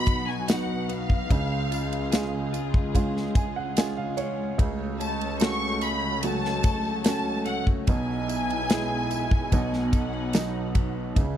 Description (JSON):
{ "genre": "pop ballad", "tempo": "73 BPM", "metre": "4/4", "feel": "straight", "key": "unclear", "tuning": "A4 = 438 Hz", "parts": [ { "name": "clear studio violin section", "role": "melody", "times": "0.0-10.3 s", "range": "F5 to C#6", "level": "-31 LUFS", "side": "left 1 dB", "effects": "none" }, { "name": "clear grand piano", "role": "accompaniment", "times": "0.0-11.4 s", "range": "B1 to G#5", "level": "-30 LUFS", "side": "right 5 dB", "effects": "none" }, { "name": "warm studio string section", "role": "sustained chords", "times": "0.0-11.4 s", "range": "C#2 to F#5", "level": "-32 LUFS", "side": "equal", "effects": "none" }, { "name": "direct-recorded clean electric guitar", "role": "arpeggios", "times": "0.0-11.4 s", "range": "B2 to B4", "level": "-34 LUFS", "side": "left 12 dB", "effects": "none" }, { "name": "modern studio drum kit", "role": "drums", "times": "0.1-11.4 s", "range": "kick drum, ride cymbal, snare drum", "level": "-23 LUFS", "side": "equal", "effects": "none" }, { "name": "tambourine", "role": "percussion", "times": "0.1-11.4 s", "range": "none", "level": "-42 LUFS", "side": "right 22 dB", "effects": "none" } ], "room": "little or no reverb", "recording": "dry, close 1970s-style studio recording", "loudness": "-23 LUFS", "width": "side -10 dB against mid", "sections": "0.0-11.4 A section", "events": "grand piano fill 2.9-4.6", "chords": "0.0 B; 1.3 C#; 4.6 F#m/C#; 7.9 E/B; 9.5 B", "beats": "0.48 | 1.30 2.12 2.95 3.77 | 4.59 5.41 6.23 7.06 | 7.88 8.70 9.52 10.34 | 11.16" }